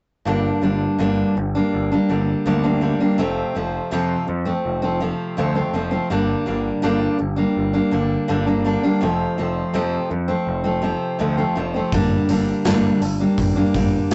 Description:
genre	quiet-loud alternative rock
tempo	82 BPM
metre	4/4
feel	straight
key	G minor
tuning	A4 = 440 Hz
part	picked steel-string acoustic guitar	arpeggios	0.3-14.1 s	F2 to D4	-22 LUFS	equal	none
part	growling picked electric bass	bass	0.3-14.1 s	F1 to F2	-28 LUFS	equal	overdrive
part	big rock drum kit	drums	11.9-14.1 s	hi-hat, kick drum, snare drum	-24 LUFS	equal	none
room	moderate booth ambience, RT60 0.2 s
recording	rough rehearsal-room recording, warm saturation, nothing above 7.9 kHz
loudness	-20 LUFS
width	mono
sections	0.3-14.1 A section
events	none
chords	0.3 Gm; 3.2 F; 6.1 Gm; 9.0 F; 11.9 Gm

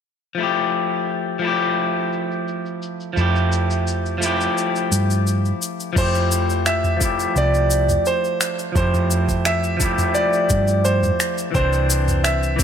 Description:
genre	sunset chillout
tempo	86 BPM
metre	4/4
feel	straight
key	F major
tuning	A4 = 440 Hz
part	electric guitar at the edge of break-up	accompaniment	0.3-12.6 s	E3 to C5	-22 LUFS	moving between left 7 dB and right 5 dB	auto-pan, low-pass filter, digital delay
part	smooth R&B drum kit	drums	0.4-12.6 s	crash cymbal, finger snaps, shaker, toms	-25 LUFS	left 1 dB	low-pass filter on perc, low-pass filter on cymbals, low-pass filter on snare, low-pass filter on toms
part	hollow-body short-scale fingered electric bass	bass	3.2-12.6 s	C2 to G2	-20 LUFS	equal	none
part	bright grand piano	melody	6.0-12.6 s	C5 to E5	-21 LUFS	right 2 dB	vintage 12-bit sampler grit, digital delay
part	electronic kick drum	drums	6.0-12.6 s	none	-22 LUFS	equal	none
room	light reverb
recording	none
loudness	-17 LUFS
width	side -8 dB against mid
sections	0.4-6.0 A section; 6.0-12.6 B section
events	filter sweep on clean electric guitar 6.0-12.6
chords	0.4 Fmaj9; 11.6 Cadd9

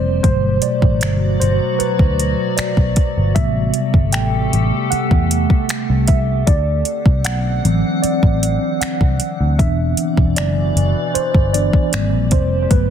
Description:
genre	contemporary R&B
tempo	77 BPM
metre	4/4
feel	straight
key	A dorian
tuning	A4 = 440 Hz
part	mellow tine electric piano	accompaniment	0.0-12.9 s	B2 to G5	-19 LUFS	right 1 dB	medium stereo tremolo
part	glassy FM pad	sustained chords	0.0-12.9 s	B2 to F#5	-24 LUFS	left 1 dB	ensemble chorus, built-in reverb, sidechain pumping
part	vintage muted picked electric bass	bass	0.0-12.9 s	E1 to E2	-18 LUFS	equal	none
part	smooth R&B drum kit	drums	0.2-12.9 s	finger snaps, hi-hat, kick drum	-16 LUFS	equal	overdrive, soft clipping on snare
room	little or no reverb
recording	dense, heavily limited modern master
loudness	-14 LUFS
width	side -9 dB against mid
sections	0.0-12.9 A section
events	tine electric piano solo 0.0-12.9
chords	0.2 Gmaj7; 3.4 Am7; 6.5 D7; 9.6 Em9; 11.9 G#maj7

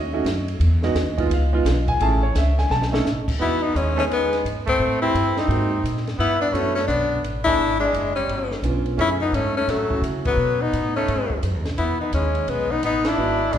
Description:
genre	jazz, small-group swing and bop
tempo	172 BPM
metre	4/4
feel	swing 63% on 8ths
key	E major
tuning	A4 = 438 Hz
part	warm concert grand piano	accompaniment	0.0-10.4, 13.2-13.4 s	G#3 to A5	-26 LUFS	right 3 dB	none
part	upright bass	bass	0.0-13.6 s	F#1 to C#3	-24 LUFS	equal	none
part	compact cocktail drum kit	drums	0.3-13.6 s	crash cymbal, hi-hat, kick drum, ride cymbal, snare drum	-31 LUFS	equal	none
part	bright tenor saxophone	melody	3.4-13.6 s	A3 to E4	-22 LUFS	left 3 dB	none
part	breathy trumpet	second line	3.4-13.6 s	F#3 to D4	-28 LUFS	right 4 dB	none
room	wet recital hall reverb, RT60 1.7 s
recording	recorded in a church or concert hall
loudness	-19 LUFS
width	side -10 dB against mid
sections	0.0-3.4 A section; 3.4-13.6 B section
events	drum fill 2.7-3.1; band accent 4.6, 7.4, 10.2, 13.0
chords	0.0 B7 (rootless); 0.6 Emaj7; 1.3 C#7; 2.0 Amaj7; 2.7 B7; 3.4 Emaj7; 4.8 Am7; 5.5 G#9; 6.2 Gmaj9; 7.6 E9; 8.3 G7#11; 9.0 F#m7; 10.4 B7; 11.8 Emaj7

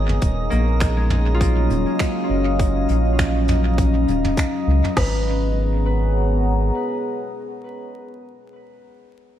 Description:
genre	ambient dub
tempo	101 BPM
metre	4/4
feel	swing 57% on 16ths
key	G# dorian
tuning	A4 = 441 Hz
part	deep dark ambient pad	sustained chords	0.0-8.1 s	F#3 to A#5	-24 LUFS	left 1 dB	chorus, built-in reverb
part	round analog bass	bass	0.0-6.7 s	D#1 to C#2	-19 LUFS	equal	none
part	drifting glass-harmonics texture	texture	0.0-5.0 s	D#4 to D#5	-32 LUFS	right 4 dB	chorus, built-in reverb
part	soft brush drum kit	drums	0.1-4.9 s	finger snaps, hi-hat, toms	-28 LUFS	right 1 dB	dub echo
part	organic electronic drum kit	drums	0.2-5.1 s	crash cymbal, kick drum, snare drum	-21 LUFS	equal	none
part	concert harp	arpeggios	0.5-8.8 s	G#3 to B4	-31 LUFS	left 3 dB	tape echo
room	light reverb, small room ambience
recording	vinyl crackle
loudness	-17 LUFS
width	side -11 dB against mid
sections	0.0-5.0 A section; 5.0-7.3 B section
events	none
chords	0.2 D#m9; 5.0 G#m11

